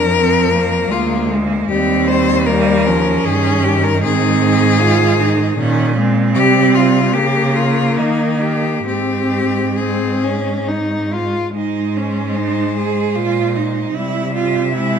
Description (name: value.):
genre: classical, lyrical piece for cello ensemble.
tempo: 65-78 BPM.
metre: 3/4.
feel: rubato.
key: Ab major.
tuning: A4 = 440 Hz.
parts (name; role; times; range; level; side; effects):
clear cello; melody; 0.0-15.0 s; Eb4 to E5; -19 LUFS; left 7 dB; none.
rich cello; second line; 0.0-15.0 s; Ab3 to Ab4; -19 LUFS; right 10 dB; none.
rich cello; accompaniment; 0.0-15.0 s; Eb3 to F4; -20 LUFS; left 3 dB; none.
rich cello; bass; 0.0-15.0 s; D2 to Eb3; -19 LUFS; right 2 dB; none.
room: light reverb.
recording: close, detailed microphones.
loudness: -13 LUFS.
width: side -7 dB against mid.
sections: 0.0-11.6 A section; 11.6-15.0 B section.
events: none.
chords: 0.0 Bb7/F; 1.7 Eb9; 4.0 Ab; 6.4 C5; 7.2 Bbm/Db; 8.0 Eb; 8.9 Ab; 14.0 C.